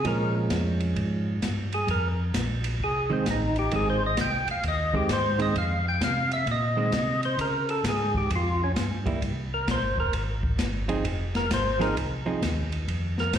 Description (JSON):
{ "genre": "soul jazz organ trio", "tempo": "131 BPM", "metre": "4/4", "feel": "swing 66% on 8ths", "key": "F minor", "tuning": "A4 = 440 Hz", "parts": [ { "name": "percussive tonewheel organ", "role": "melody", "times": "0.0-13.4 s", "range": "C4 to G5", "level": "-27 LUFS", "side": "left 1 dB", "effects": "slow rotary speaker, overdrive, slapback echo" }, { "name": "hollow-body jazz guitar", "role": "accompaniment", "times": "0.0-12.4 s", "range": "Eb3 to Ab4", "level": "-29 LUFS", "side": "right 4 dB", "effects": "slapback echo" }, { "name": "mellow tonewheel organ", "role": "bass", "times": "0.0-13.4 s", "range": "E1 to Db3", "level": "-28 LUFS", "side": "equal", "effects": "chorus vibrato, slow rotary speaker" }, { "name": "open jazz drum kit", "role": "drums", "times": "0.0-13.4 s", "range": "hi-hat, kick drum, ride cymbal, snare drum", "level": "-31 LUFS", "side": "equal", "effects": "none" } ], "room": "light reverb, studio ambience", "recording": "live gig heard through the venue's PA, recital hall reverb", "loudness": "-24 LUFS", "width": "side -9 dB against mid", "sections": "0.0-13.4 A section", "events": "tonewheel organ solo 0.0-13.4", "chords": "0.0 Bbm7; 1.9 Fm7; 7.4 Db; 9.2 C7; 11.1 Fm7", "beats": "| 0.05 0.51 0.96 1.42 | 1.88 2.34 2.80 3.26 | 3.72 4.18 4.64 5.09 | 5.55 6.01 6.47 6.93 | 7.39 7.84 8.30 8.76 | 9.22 9.68 10.13 10.59 | 11.05 11.51 11.96 12.42 | 12.88 13.34" }